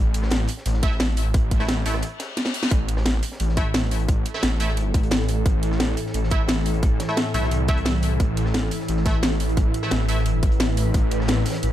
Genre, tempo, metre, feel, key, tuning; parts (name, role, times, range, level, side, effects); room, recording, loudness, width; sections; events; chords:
dark technical drum and bass; 175 BPM; 4/4; straight; A4 = 435 Hz
wide detuned saw bass; bass; 0.0-11.7 s; A1 to C2; -23 LUFS; equal; chorus
crunchy breakbeat drum kit; drums; 0.1-11.7 s; hi-hat, snare drum; -38 LUFS; equal; high-pass filter on hats, high-pass filter on snare, high-pass filter on room
drum and bass drum kit; drums; 0.1-11.7 s; hi-hat, rim click, snare drum; -26 LUFS; equal; overdrive
band-passed chord stab; stabs; 0.8-10.2 s; A3 to E5; -30 LUFS; right 1 dB; chorus, ping-pong delay
electronic kick drum; drums; 0.8-11.0 s; -21 LUFS; equal; overdrive
reverse cymbal; sound effects; 2.1-2.7 s; -32 LUFS; left 7 dB
swarming drone; sustained chords; 4.0-11.7 s; A2 to B4; -27 LUFS; equal; built-in reverb, sidechain pumping
digital ambience; dark, warm production; -20 LUFS; side -12 dB against mid
0.0-11.7 A section
break 2.0-2.7; reverse cymbal 2.1-2.7; drum fill 2.4-2.7
0.0 A5